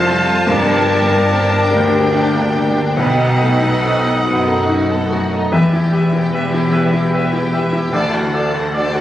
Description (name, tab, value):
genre	cinematic, emotional film score for orchestra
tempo	48 BPM (dotted quarters)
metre	6/8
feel	uneven beats, rubato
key	E minor from 5.5 s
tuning	A4 = 444 Hz
part	clear symphonic violin section	melody	0.0-9.0 s	E5 to A5	-24 LUFS	left 1 dB	none
part	bright clarinet	second line	0.0-8.9 s	A4 to C5	-26 LUFS	equal	none
part	mellow hollow large flute ensemble	second line	0.0-8.8 s	F#5 to A5	-26 LUFS	equal	none
part	mellow oboe	second line	0.0-8.9 s	D5 to F5	-24 LUFS	right 1 dB	none
part	warm symphonic violin section	second line	0.0-9.0 s	Bb3 to D5	-24 LUFS	equal	none
part	bright symphonic viola section	accompaniment	0.0-9.0 s	D4 to A4	-27 LUFS	equal	none
part	felt-muted upright piano	accompaniment	0.0-9.0 s	B1 to D5	-21 LUFS	equal	none
part	dark French horn section	sustained chords	0.0-9.0 s	A3 to G4	-24 LUFS	left 3 dB	none
part	concert harp	arpeggios	0.0-9.0 s	F2 to B5	-21 LUFS	left 3 dB	none
part	clear symphonic cello section	bass	0.0-9.0 s	C2 to B2	-20 LUFS	right 1 dB	none
part	warm symphonic double bass section	bass	0.0-9.0 s	E1 to D2	-22 LUFS	right 1 dB	none
room	moderate scoring stage reverb, RT60 1.9 s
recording	recorded on a phone in the room, club reverb, compression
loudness	-13 LUFS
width	side -12 dB against mid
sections	0.0-5.5 A section; 5.5-9.0 B section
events	none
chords	0.5 Gm; 3.0 B7; 5.5 Em; 7.9 D